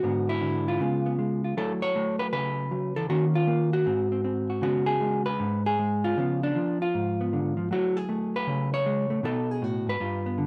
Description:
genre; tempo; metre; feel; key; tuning
solo jazz; 156 BPM; 4/4; swing 65% on 8ths; unclear; A4 = 440 Hz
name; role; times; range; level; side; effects
hollow-body jazz guitar; solo; 0.0-10.5 s; G2 to C#5; -27 LUFS; equal; none
room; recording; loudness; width
moderate studio reverb, RT60 0.7 s; none; -27 LUFS; mono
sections
0.0-10.5 A section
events
none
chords
0.0 G#m7b5; 0.8 C#7; 1.6 F#m7; 3.1 D#sus2; 3.9 G#7; 4.6 C#5; 6.2 C#7b9; 7.7 F#m9; 9.2 B7

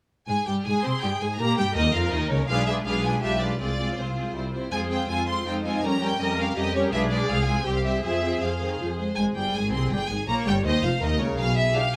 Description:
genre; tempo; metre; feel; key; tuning
quick classical-period movement for string orchestra; 163 BPM; 3/4; straight; unclear; A4 = 439 Hz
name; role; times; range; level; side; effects
clear studio violin section; melody; 0.3-11.9 s; C5 to C6; -30 LUFS; equal; none
rich studio violin section; second line; 0.3-12.0 s; Db4 to Db5; -35 LUFS; equal; none
rich studio viola section; accompaniment; 0.3-11.8 s; Db3 to Ab4; -32 LUFS; equal; none
rich studio double bass section; bass; 0.3-11.7 s; F1 to C3; -30 LUFS; equal; none
warm studio cello section; bass; 0.7-11.7 s; Db2 to Bb4; -34 LUFS; equal; none
room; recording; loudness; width
moderate studio reverb, RT60 0.8 s; none; -25 LUFS; mono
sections
0.3-9.2 A section; 9.2-12.0 B section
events
none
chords
0.3 Abmaj7/G; 1.4 Gdim; 2.5 Bdim7; 3.6 Fm/C; 4.3 C; 4.7 Fm; 5.8 Gdim/F; 6.9 Bdim7; 7.3 Fm/C; 7.7 C; 8.0 Fm; 9.2 Abmaj7/G; 10.3 Gdim; 11.4 G13b9/B

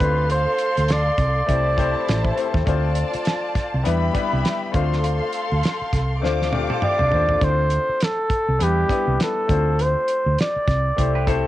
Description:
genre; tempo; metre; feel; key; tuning
lush 1970s-style soul; 101 BPM; 4/4; swing 58% on 16ths; D dorian; A4 = 442 Hz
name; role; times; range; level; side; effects
warm flugelhorn; melody; 0.0-2.4, 6.8-11.3 s; G4 to D5; -21 LUFS; right 1 dB; cassette tape
warm studio violin section; second line; 0.0-7.4 s; E4 to D6; -27 LUFS; equal; cassette tape
clear grand piano; accompaniment; 0.0-11.5 s; G3 to C5; -26 LUFS; left 8 dB; cassette tape
hollow-body short-scale fingered electric bass; bass; 0.0-11.4 s; A1 to E2; -22 LUFS; right 1 dB; none
damped 70s drum kit; drums; 0.0-11.4 s; hi-hat, kick drum, snare drum, toms; -24 LUFS; right 1 dB; none
electric guitar through a small old amp; riff; 6.7-7.4, 11.2-11.5 s; D4 to B4; -29 LUFS; right 8 dB; cassette tape
room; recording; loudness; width
light reverb, small room ambience; home recording on cassette; -18 LUFS; side -14 dB against mid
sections
0.0-7.4 A section; 7.4-11.5 A section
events
drum fill 6.2-7.4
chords
0.0 Dm7; 1.5 C6; 2.7 Dm7; 3.9 Em7; 4.7 Dm7; 8.6 Em7; 9.5 Dm7

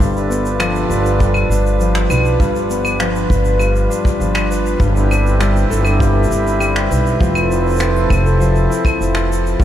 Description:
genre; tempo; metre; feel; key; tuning
folktronica; 100 BPM; 4/4; straight; unclear; A4 = 442 Hz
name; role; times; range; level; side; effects
hand-pumped harmonium; sustained chords; 0.0-9.6 s; F3 to B4; -20 LUFS; right 2 dB; none
Celtic harp; arpeggios; 0.0-9.6 s; G2 to B4; -20 LUFS; left 3 dB; diffuse ambient delay
upright bass; bass; 0.0-9.6 s; F1 to B1; -17 LUFS; equal; none
shaker, claves and finger snaps; drums; 0.0-9.6 s; none; -23 LUFS; left 1 dB; none
kick drum; drums; 1.2-9.6 s; none; -18 LUFS; equal; none
room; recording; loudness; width
moderate huge ambient reverb, RT60 7.4 s; dreamy mix soaked in reverb; -13 LUFS; side -11 dB against mid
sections
0.0-9.6 A section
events
none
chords
0.0 G7; 4.8 Cmaj7/G; 7.2 Fmaj7

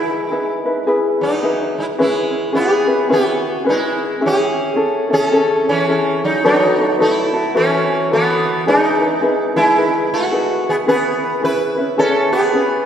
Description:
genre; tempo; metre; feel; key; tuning
Hawaiian; 108 BPM; 4/4; swing 62% on 8ths; C# minor; A4 = 439 Hz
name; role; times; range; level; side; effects
sitar; melody; 0.0-12.9 s; E3 to B4; -17 LUFS; right 1 dB; none
ukulele; accompaniment; 0.0-12.9 s; C#4 to B4; -17 LUFS; left 1 dB; none
room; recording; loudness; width
wet concert hall reverb, RT60 2.5 s; heard from further back in the room; -14 LUFS; side -9 dB against mid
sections
0.0-2.0 A section; 2.0-12.9 B section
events
none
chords
0.0 Emaj7; 2.0 C#m7; 4.2 F#m9 (rootless); 6.4 B7sus4; 8.7 Emaj7; 10.9 C#m7

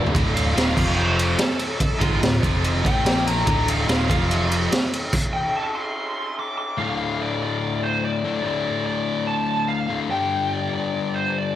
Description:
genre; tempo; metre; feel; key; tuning
hard rock; 144 BPM; 4/4; straight; D phrygian; A4 = 438 Hz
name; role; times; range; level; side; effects
biting overdriven guitar; riff; 0.0-11.5 s; D2 to Bb3; -26 LUFS; left 5 dB; none
heavy high-gain guitar; riff; 0.0-4.7 s; D2 to Bb3; -32 LUFS; right 3 dB; none
tight distorted guitar; riff; 0.0-4.7 s; D2 to Bb3; -30 LUFS; right 10 dB; distortion, slapback echo
picked electric bass; bass; 0.0-4.7 s; D1 to Bb1; -24 LUFS; equal; none
raw garage drum kit; drums; 0.1-5.2 s; crash cymbal, kick drum, ride cymbal, snare drum, toms; -23 LUFS; equal; none
bluesy overdriven lead guitar; melody; 0.3-11.6 s; F4 to D6; -26 LUFS; equal; distortion
room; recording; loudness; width
moderate lush hall reverb, RT60 1.9 s, studio reverb; big arena sound; -20 LUFS; side -12 dB against mid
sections
0.1-6.8 A section; 6.8-11.6 B section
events
lead electric guitar solo 0.1-6.8; stop 5.1-6.8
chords
0.1 Dm; 0.8 F5; 2.0 Dm; 2.4 F5; 2.8 Emadd11/A; 3.0 Bb5; 3.5 Dm; 4.1 F5; 5.1 N.C.; 6.8 Dm; 10.1 G5

